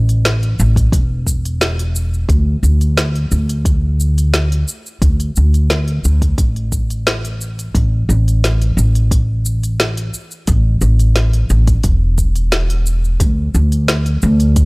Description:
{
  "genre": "sunset chillout",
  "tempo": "88 BPM",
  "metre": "4/4",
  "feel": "straight",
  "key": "unclear",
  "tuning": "A4 = 440 Hz",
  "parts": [
    { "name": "upright bass", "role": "bass", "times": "0.0-14.7 s", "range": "E1 to D2", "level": "-14 LUFS", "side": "equal", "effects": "transformer saturation" },
    { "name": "deep house drum kit", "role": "drums", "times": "0.1-14.7 s", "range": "hi-hat, shaker, snare drum", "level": "-20 LUFS", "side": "equal", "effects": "small room ambience" },
    { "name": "electronic kick drum", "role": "drums", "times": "0.8-14.7 s", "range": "none", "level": "-16 LUFS", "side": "equal", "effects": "small room ambience" }
  ],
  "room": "digital ambience",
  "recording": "dry, gritty hardware recording",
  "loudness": "-13 LUFS",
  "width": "side -29 dB against mid",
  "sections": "0.0-14.7 A section",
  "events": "none",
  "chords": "none"
}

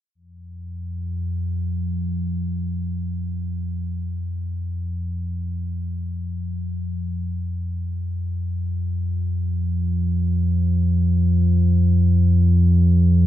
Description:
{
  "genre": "ambient",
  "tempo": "free time",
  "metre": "none",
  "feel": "none",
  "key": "unclear",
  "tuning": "A4 = 440 Hz",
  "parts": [
    { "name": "deep rumbling drone", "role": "drone", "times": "0.4-13.3 s", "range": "F2 to F3", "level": "-20 LUFS", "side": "equal", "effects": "built-in reverb" }
  ],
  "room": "moderate huge ambient reverb, RT60 7.4 s",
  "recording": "dark, warm production",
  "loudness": "-20 LUFS",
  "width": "side -13 dB against mid",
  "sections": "0.2-13.3 A section",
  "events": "none",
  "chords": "none"
}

